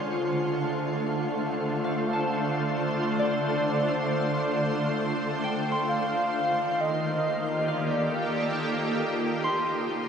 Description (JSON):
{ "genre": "ambient", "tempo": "67 BPM", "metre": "4/4", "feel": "straight", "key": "unclear", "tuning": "A4 = 440 Hz", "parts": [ { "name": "shimmering ambient pad", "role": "sustained chords", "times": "0.0-10.1 s", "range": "Db3 to C5", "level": "-26 LUFS", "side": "equal", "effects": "chorus, built-in reverb" }, { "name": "concert harp", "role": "arpeggios", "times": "0.0-10.1 s", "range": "C5 to C6", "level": "-34 LUFS", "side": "equal", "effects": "tape echo" }, { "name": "warm velvety synth lead", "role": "melody", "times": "3.2-9.0 s", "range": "D5 to F5", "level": "-32 LUFS", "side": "equal", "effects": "chorus, tape echo" } ], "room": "wet shimmer reverb, RT60 8.8 s", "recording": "none", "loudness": "-25 LUFS", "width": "side -7 dB against mid", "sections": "0.0-10.1 A section", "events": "none", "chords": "0.0 Dm7; 5.9 Ebmaj9#11; 9.4 Dbmaj7" }